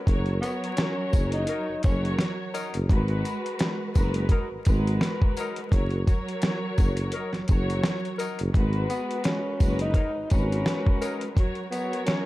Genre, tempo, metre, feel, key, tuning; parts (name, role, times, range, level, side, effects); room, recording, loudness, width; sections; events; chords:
hip hop, boom-bap hip-hop; 85 BPM; 4/4; swing 57% on 16ths; G# minor; A4 = 441 Hz
growling tenor saxophone; melody; 0.0-2.2, 8.9-12.3 s; B3 to D#4; -31 LUFS; left 1 dB; high-pass filter, low-pass filter, ping-pong delay
rich studio string section; accompaniment; 0.0-12.3 s; F#3 to C#5; -31 LUFS; equal; high-pass filter, low-pass filter
dark tuba; bass; 0.1-10.6 s; F#1 to G#1; -27 LUFS; equal
dusty soul sampler-style drum kit; drums; 0.1-12.3 s; hi-hat, kick drum, snare drum; -24 LUFS; equal
tambourine; percussion; 0.4-11.9 s; -48 LUFS; left 5 dB
clear saxophone section; stabs; 1.5-11.2 s; F#3 to A#4; -36 LUFS; left 3 dB; high-pass filter, low-pass filter, ping-pong delay
small room reverb; dark, warm production, vinyl crackle; -23 LUFS; side -18 dB against mid
0.0-12.3 A section
0.1 D#m7/F#; 2.9 G#m9; 5.7 D#m7/F#; 8.5 G#m9; 11.4 D#m7/F# (rootless)